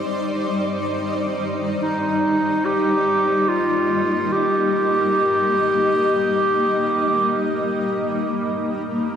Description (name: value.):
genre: ambient.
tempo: free time.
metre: none.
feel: none.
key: unclear.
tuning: A4 = 440 Hz.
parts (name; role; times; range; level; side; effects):
granular cloud pad; sustained chords; 0.0-9.2 s; G3 to Eb5; -22 LUFS; left 1 dB; built-in reverb.
warm clarinet; melody; 1.8-8.5 s; Eb4 to G4; -19 LUFS; equal; dub echo.
room: wet huge ambient reverb, RT60 3.7 s.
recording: dark, warm production.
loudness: -18 LUFS.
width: side -8 dB against mid.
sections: 0.0-9.2 A section.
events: none.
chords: 0.0 Cmadd9/G.